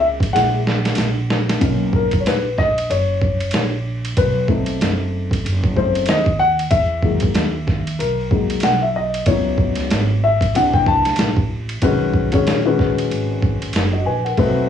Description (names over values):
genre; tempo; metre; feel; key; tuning
hip hop, jazz-hop; 94 BPM; 4/4; swing 58% on 16ths; B major; A4 = 443 Hz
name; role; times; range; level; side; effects
dark baby grand piano; accompaniment; 0.0-14.7 s; D#3 to A5; -19 LUFS; left 4 dB; cassette tape
upright bass; bass; 0.0-14.7 s; F#1 to E2; -22 LUFS; right 2 dB; none
boom bap sampler-style drum kit; drums; 0.2-14.6 s; hi-hat, kick drum, ride cymbal, snare drum; -20 LUFS; right 1 dB; overdrive, cassette tape
room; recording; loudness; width
moderate booth ambience, RT60 0.3 s; home recording on cassette, small room ambience; -16 LUFS; side -9 dB against mid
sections
0.0-1.6 A section; 1.6-11.8 B section; 11.8-14.7 C section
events
grand piano solo 0.0-1.6, 1.6-11.8; drum fill 0.3-1.6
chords
0.0 F#7; 1.6 Bmaj9; 4.2 B7b9; 6.7 Emaj9#11; 9.3 C#m11; 10.6 C9; 11.8 Bmaj9